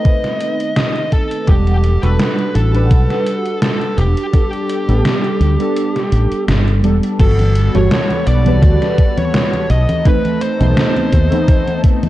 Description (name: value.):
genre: vaporwave.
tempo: 84 BPM.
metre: 4/4.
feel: swing 54% on 16ths.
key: unclear.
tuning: A4 = 440 Hz.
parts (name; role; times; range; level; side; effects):
fuzz lead guitar; melody; 0.0-11.8 s; G4 to D#5; -21 LUFS; equal; distortion, tape echo.
warbly lo-fi synth keys; accompaniment; 0.0-12.1 s; D#3 to F#5; -19 LUFS; right 1 dB; phaser, analog chorus.
electronic kick drum; drums; 0.1-12.0 s; none; -12 LUFS; equal; overdrive.
gated 80s digital drum machine; drums; 0.1-12.1 s; congas, crash cymbal, hi-hat, snare drum; -19 LUFS; left 1 dB; gated reverb, gated reverb snare, overdrive.
mellow fretless electric bass; bass; 1.5-11.3 s; E1 to D#2; -13 LUFS; equal; none.
lush unison pad; sustained chords; 7.2-12.1 s; G3 to B4; -28 LUFS; equal; chorus.
room: digital ambience.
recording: cassette tape.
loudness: -12 LUFS.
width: side -15 dB against mid.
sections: 0.0-7.2 A section; 7.2-12.1 B section.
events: kick drops out 5.8-7.2.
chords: 0.0 B7b9; 1.5 Em11; 4.3 A9sus4; 7.2 Gmaj9; 9.7 B7b9.